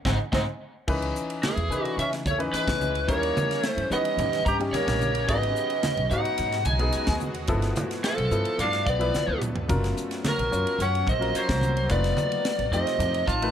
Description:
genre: electric jazz fusion.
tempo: 109 BPM.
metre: 4/4.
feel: straight.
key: C# minor.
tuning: A4 = 444 Hz.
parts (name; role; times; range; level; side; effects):
lead guitar through a small cranked amp; melody; 0.1-13.5 s; G#4 to A#5; -27 LUFS; equal; overdrive.
mellow tenor saxophone; second line; 0.1-13.5 s; E3 to G4; -32 LUFS; right 3 dB; plate reverb.
warm grand piano; accompaniment; 0.1-13.5 s; E3 to C#5; -32 LUFS; left 3 dB; plate reverb.
upright bass; bass; 0.1-13.5 s; F1 to D#3; -29 LUFS; equal; none.
crisp fusion drum kit; drums; 0.1-13.5 s; crash cymbal, hi-hat, kick drum, ride cymbal, snare drum, toms; -32 LUFS; equal; none.
congas; percussion; 0.1-13.1 s; none; -33 LUFS; right 2 dB; none.
shimmering ambient pad; sustained chords; 2.1-13.5 s; B2 to G4; -36 LUFS; equal; chorus, built-in reverb.
room: moderate club reverb, RT60 0.7 s.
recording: none.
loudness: -23 LUFS.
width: side -9 dB against mid.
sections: 0.9-13.5 A section.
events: band accent 0.0-0.9; drum fill 9.1-9.7.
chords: 0.0 G#; 0.9 C#m9; 3.1 D#7b13; 5.3 G#m7; 7.5 G13; 9.7 F#maj7; 11.9 F7#11.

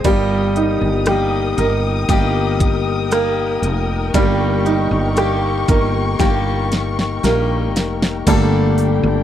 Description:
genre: pop ballad.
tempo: 59 BPM.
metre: 4/4.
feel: straight.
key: unclear.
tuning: A4 = 440 Hz.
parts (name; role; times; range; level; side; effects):
clear baby grand piano; accompaniment; 0.0-9.2 s; G3 to Bb4; -20 LUFS; right 6 dB; none.
picked steel-string acoustic guitar; arpeggios; 0.0-9.2 s; G2 to A4; -21 LUFS; left 10 dB; none.
woody fretless electric bass; bass; 0.0-9.2 s; F1 to Bb1; -20 LUFS; equal; none.
pop drum kit; drums; 0.0-9.0 s; crash cymbal, hi-hat, kick drum, rim click, snare drum; -18 LUFS; equal; none.
warm studio string section; sustained chords; 0.1-9.2 s; G4 to Eb6; -26 LUFS; left 3 dB; none.
room: little or no reverb.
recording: dry, close 1970s-style studio recording.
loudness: -15 LUFS.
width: side -11 dB against mid.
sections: 0.0-8.3 A section.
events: drum fill 6.2-8.3.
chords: 0.1 Eb; 8.3 Gmadd9.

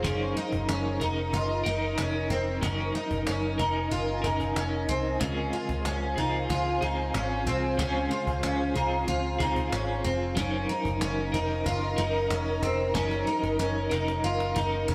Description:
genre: dream pop.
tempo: 93 BPM.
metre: 4/4.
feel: straight.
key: unclear.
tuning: A4 = 445 Hz.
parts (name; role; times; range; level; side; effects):
electric guitar at the edge of break-up; accompaniment; 0.0-14.9 s; Db3 to Bb4; -35 LUFS; equal; tremolo, lush chorus.
ethereal airy pad; sustained chords; 0.0-14.9 s; Bb4 to Bb5; -35 LUFS; equal; ensemble chorus, built-in reverb.
picked twelve-string acoustic guitar; arpeggios; 0.0-14.9 s; C4 to F4; -33 LUFS; equal; lush chorus, analog delay.
vintage muted picked electric bass; bass; 0.0-14.9 s; F1 to Db2; -34 LUFS; equal; none.
cajon; drums; 0.0-14.9 s; none; -40 LUFS; equal; none.
room: light reverb, small room ambience.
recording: dry, gritty hardware recording.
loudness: -28 LUFS.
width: mono.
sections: 0.0-14.9 A section.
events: drum fill 12.9-14.9.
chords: 0.0 Gb6; 5.2 Dbmaj7; 10.4 Gb6.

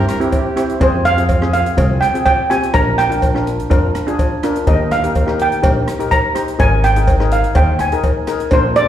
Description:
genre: calypso.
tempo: 125 BPM.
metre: 4/4.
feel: straight.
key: unclear.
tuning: A4 = 440 Hz.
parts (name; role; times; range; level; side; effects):
brilliant horn section; second line; 0.0-0.7 s; G4 to Bb4; -25 LUFS; equal; plate reverb, slapback echo.
steel pan; accompaniment; 0.0-8.7 s; C4 to C5; -19 LUFS; left 2 dB; plate reverb, slapback echo.
upright bass; bass; 0.0-8.9 s; Ab1 to F2; -17 LUFS; equal; none.
open jazz drum kit; drums; 0.1-8.9 s; hi-hat, kick drum, rim click; -19 LUFS; equal; none.
cowbell; percussion; 0.3-8.6 s; none; -23 LUFS; left 1 dB; slapback echo.
steel pan; melody; 0.8-8.9 s; C5 to Bb5; -16 LUFS; right 2 dB; plate reverb, slapback echo.
room: light reverb.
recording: live gig heard through the venue's PA, recital hall reverb.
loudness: -13 LUFS.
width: side -11 dB against mid.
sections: 0.0-8.9 A section.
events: none.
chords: 0.0 C; 0.8 Fm; 2.7 Bb; 4.7 Eb; 6.6 Absus2.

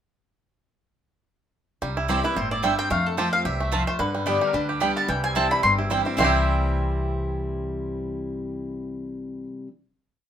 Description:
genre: bluegrass.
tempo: 220 BPM.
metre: 4/4.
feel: swing 55% on 8ths.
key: C major.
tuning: A4 = 442 Hz.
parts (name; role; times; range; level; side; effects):
picked steel-string acoustic guitar; accompaniment; 1.8-9.7 s; E2 to G4; -29 LUFS; left 2 dB; none.
bluegrass banjo; arpeggios; 1.8-9.5 s; D3 to G4; -28 LUFS; right 3 dB; none.
upright bass; bass; 1.8-9.4 s; G1 to G2; -29 LUFS; equal; none.
mandolin; melody; 2.1-9.4 s; A4 to C6; -25 LUFS; left 1 dB; none.
mandolin; stabs; 2.1-9.7 s; B3 to A5; -28 LUFS; right 6 dB; none.
lap resonator guitar; second line; 4.3-9.4 s; G4 to E5; -28 LUFS; left 7 dB; none.
room: moderate studio ambience, RT60 0.5 s.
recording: minimal, uncompressed stereo recording.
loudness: -22 LUFS.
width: side -9 dB against mid.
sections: 1.8-6.2 A section; 6.2-8.4 final chord.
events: none.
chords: 1.8 C; 2.9 F; 4.0 G; 5.1 C.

